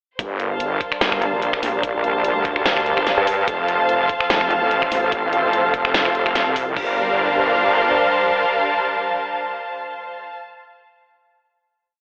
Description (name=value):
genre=heavy wobble dubstep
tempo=146 BPM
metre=4/4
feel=swing 54% on 16ths, half-time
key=G minor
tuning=A4 = 440 Hz
part: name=supersaw chords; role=sustained chords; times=0.2-10.3 s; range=F3 to F5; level=-25 LUFS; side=equal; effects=sidechain pumping, low-pass filter
part: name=wobble bass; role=bass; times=0.2-8.0 s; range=F1 to D2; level=-26 LUFS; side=equal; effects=chorus, overdrive
part: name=dubstep drum kit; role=drums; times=0.2-6.9 s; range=crash cymbal, finger snaps, hi-hat, snare drum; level=-25 LUFS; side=equal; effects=studio reverb
part: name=electronic kick drum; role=drums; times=0.2-6.9 s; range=none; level=-32 LUFS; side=equal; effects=studio reverb
part: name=rich studio string section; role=texture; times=0.2-10.4 s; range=C5 to A5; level=-24 LUFS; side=equal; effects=sidechain pumping
part: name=metallic wobble bass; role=bass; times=1.0-5.0 s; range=F1 to G2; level=-24 LUFS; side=equal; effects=chorus, overdrive
room=wet lush hall reverb, RT60 2.1 s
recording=telephone sound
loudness=-19 LUFS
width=mono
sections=0.2-6.8 drop; 6.8-10.1 final chord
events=drop 0.2-6.8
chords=0.2 Gm7; 3.5 F; 6.8 Gm7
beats=| 0.19 0.60 1.01 1.42 | 1.83 2.25 2.66 3.07 | 3.48 3.89 4.30 4.71 | 5.12 5.53 5.94 6.36 | 6.77 7.18 7.59 8.00 | 8.41 8.82 9.23 9.64